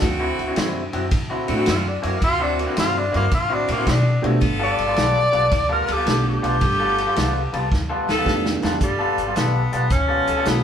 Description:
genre	electric blues shuffle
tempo	109 BPM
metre	4/4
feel	swing 67% on 8ths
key	G mixolydian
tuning	A4 = 440 Hz
part	clear saxophone section	stabs	0.0-10.6 s	B3 to A4	-28 LUFS	right 1 dB	none
part	upright bass	bass	0.0-10.6 s	G1 to B2	-24 LUFS	equal	none
part	vintage drum kit	drums	0.0-10.6 s	hi-hat, kick drum, ride cymbal, snare drum	-24 LUFS	equal	none
part	electric guitar through a small old amp	riff	0.2-10.5 s	D3 to A4	-25 LUFS	left 2 dB	none
part	dark concert grand piano	accompaniment	1.5-10.6 s	Ab3 to G4	-25 LUFS	right 2 dB	none
part	clear tenor saxophone	melody	1.7-10.6 s	G3 to D5	-22 LUFS	left 1 dB	none
room	moderate stone room reverb, RT60 1.0 s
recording	band playing live in one room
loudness	-18 LUFS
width	side -8 dB against mid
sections	0.0-8.8 A section; 8.8-10.6 B section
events	tenor saxophone solo 0.0-8.8; drum fill 7.7-8.8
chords	0.0 D9; 4.4 G9

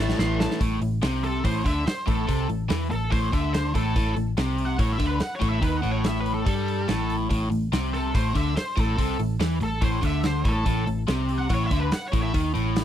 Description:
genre	blues rock power trio and southern rock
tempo	143 BPM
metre	4/4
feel	straight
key	unclear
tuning	A4 = 440 Hz
part	octave-fuzz lead guitar	melody	0.0-12.4 s	A4 to C6	-31 LUFS	equal	wah, distortion, slapback echo
part	overdriven electric guitar	riff	0.0-12.8 s	A2 to A3	-26 LUFS	left 1 dB	none
part	vintage muted picked electric bass	bass	0.0-12.8 s	A1 to G2	-27 LUFS	equal	none
part	big rock drum kit	drums	0.1-12.8 s	hi-hat, kick drum, snare drum	-28 LUFS	equal	none
room	little or no reverb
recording	dry, close 1970s-style studio recording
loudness	-22 LUFS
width	side -11 dB against mid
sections	0.6-12.8 A section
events	drum fill 0.0-0.6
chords	0.0 A5

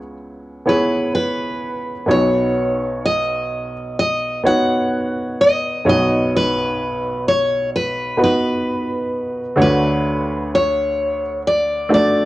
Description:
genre	acoustic folk-pop ballad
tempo	64 BPM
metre	4/4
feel	straight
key	unclear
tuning	A4 = 441 Hz
part	picked steel-string acoustic guitar	melody	0.0-12.3 s	B4 to F#5	-19 LUFS	equal	cassette tape
part	warm upright piano	accompaniment	0.0-12.3 s	B1 to D5	-19 LUFS	right 1 dB	none
room	moderate studio reverb, RT60 0.6 s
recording	home recording on cassette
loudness	-16 LUFS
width	side -17 dB against mid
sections	0.0-12.3 A section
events	none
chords	0.0 C#m7; 2.1 Badd9; 9.6 Dmaj7

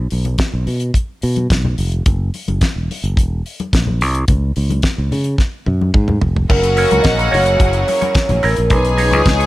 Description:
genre	disco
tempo	108 BPM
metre	4/4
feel	straight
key	unclear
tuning	A4 = 440 Hz
part	fingered electric bass	bass	0.0-9.5 s	E1 to C#3	-17 LUFS	equal	none
part	damped 70s drum kit	drums	0.1-9.5 s	crash cymbal, hi-hat, kick drum, snare drum, toms	-17 LUFS	equal	none
part	congas	percussion	0.1-9.2 s	none	-26 LUFS	left 3 dB	none
part	vibraphone with soft mallets	melody	6.5-9.5 s	A#4 to D#5	-17 LUFS	right 1 dB	none
part	clear studio violin section	second line	6.5-9.5 s	F#4 to G#5	-22 LUFS	left 1 dB	slapback echo
part	semi-hollow electric guitar	accompaniment	6.5-9.5 s	D#4 to C#5	-23 LUFS	right 3 dB	wah
part	clear studio string section	sustained chords	6.5-9.5 s	F#3 to A#4	-27 LUFS	equal	none
part	mellow horn section	stabs	6.5-9.5 s	A#3 to G#4	-22 LUFS	left 4 dB	slapback echo
room	studio reverb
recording	none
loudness	-13 LUFS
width	side -16 dB against mid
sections	0.0-6.5 A section; 6.5-9.5 B section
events	drum fill 5.4-6.5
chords	0.0 N.C.; 2.1 F#7; 4.3 C#5; 6.5 F#7; 8.7 B69

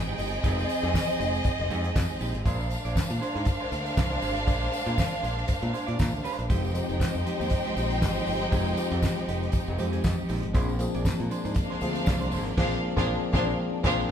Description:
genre	disco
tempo	119 BPM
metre	4/4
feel	swing 56% on 16ths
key	F dorian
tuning	A4 = 439 Hz
part	warm studio violin section	second line	0.0-14.0 s	C4 to G5	-31 LUFS	equal	none
part	clear symphonic string section	sustained chords	0.0-14.1 s	F3 to G5	-37 LUFS	right 1 dB	none
part	modern bright fingered electric bass	bass	0.0-14.0 s	F1 to Bb2	-31 LUFS	equal	none
part	clean electric guitar	accompaniment	0.1-14.0 s	Ab3 to D5	-37 LUFS	right 5 dB	none
part	damped 70s drum kit	drums	0.2-14.0 s	crash cymbal, handclaps, hi-hat, kick drum, snare drum	-28 LUFS	equal	none
part	tambourine	percussion	0.2-12.4 s	none	-44 LUFS	left 4 dB	none
part	tine electric piano	accompaniment	6.5-14.1 s	F3 to Ab4	-30 LUFS	left 2 dB	medium stereo tremolo
room	wet large studio reverb, RT60 1.0 s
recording	band playing live in one room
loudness	-24 LUFS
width	side -9 dB against mid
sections	0.0-14.1 A section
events	band accent 12.6-14.1; drum fill 13.6-14.1; tine electric piano fill 13.8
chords	0.0 Fm9; 2.5 Bb9; 6.5 Fm9; 10.5 Bb9

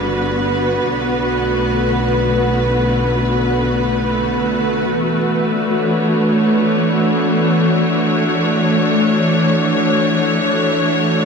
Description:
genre	ambient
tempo	free time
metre	none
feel	none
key	D major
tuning	A4 = 438 Hz
part	rich symphonic string section	sustained chords	0.0-11.2 s	D3 to C#5	-14 LUFS	equal	low-pass filter
part	warm studio double bass section	bass	0.0-4.9 s	G1 to B1	-23 LUFS	equal	none
part	organ-like drone	drone	0.0-5.0 s	none	barely audible	none	none
room	wet huge ambient reverb, RT60 8.0 s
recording	dreamy mix soaked in reverb, cassette tape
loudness	-14 LUFS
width	side -5 dB against mid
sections	0.0-4.9 A section; 4.9-11.2 B section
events	filter sweep on string section 4.9-11.2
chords	0.0 Gmaj7; 0.9 Bm7; 4.9 Dmaj9

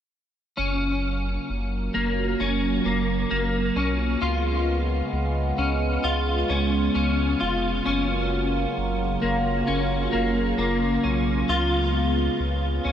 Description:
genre	dream pop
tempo	66 BPM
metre	4/4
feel	straight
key	F# major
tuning	A4 = 442 Hz
part	phased analog pad	sustained chords	0.6-12.9 s	C#3 to E#4	-26 LUFS	right 1 dB	phaser, chorus
part	clean electric guitar	arpeggios	0.6-12.9 s	A#3 to E#4	-25 LUFS	left 1 dB	ensemble chorus, tape echo
part	saturated sub bass	bass	0.6-12.9 s	E#1 to C#2	-27 LUFS	equal	none
room	wet huge ambient reverb, RT60 7.6 s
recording	dreamy mix soaked in reverb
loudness	-22 LUFS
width	side -9 dB against mid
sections	0.6-12.9 A section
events	none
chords	0.6 F#maj7; 4.2 C#7; 7.9 F#maj7; 11.5 C#7

